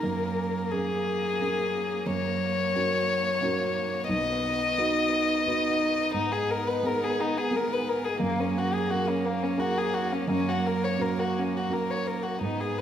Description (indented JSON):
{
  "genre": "neoclassical piano and strings",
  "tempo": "88 BPM",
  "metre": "3/4",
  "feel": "rubato",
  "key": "unclear",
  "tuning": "A4 = 440 Hz",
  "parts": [
    { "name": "warm violin", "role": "melody", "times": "0.0-12.8 s", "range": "A#3 to D#5", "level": "-27 LUFS", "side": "left 4 dB", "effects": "none" },
    { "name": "dark cello", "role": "second line", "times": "0.0-12.8 s", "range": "A#3 to B3", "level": "-36 LUFS", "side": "right 4 dB", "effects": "none" },
    { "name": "felt-muted upright piano", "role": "accompaniment", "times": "0.0-12.8 s", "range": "B1 to B4", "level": "-30 LUFS", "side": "right 4 dB", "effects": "none" },
    { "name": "warm chamber string section", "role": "sustained chords", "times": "0.0-12.8 s", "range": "B3 to B4", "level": "-38 LUFS", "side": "equal", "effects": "none" }
  ],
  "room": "wet recital hall reverb, RT60 1.6 s",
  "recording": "recorded in a church or concert hall",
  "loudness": "-25 LUFS",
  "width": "side -9 dB against mid",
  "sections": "0.0-12.8 A section",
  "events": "none",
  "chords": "0.0 F#add9; 2.1 F#; 4.1 B; 6.1 G#madd9; 8.2 F#add9; 10.3 F#"
}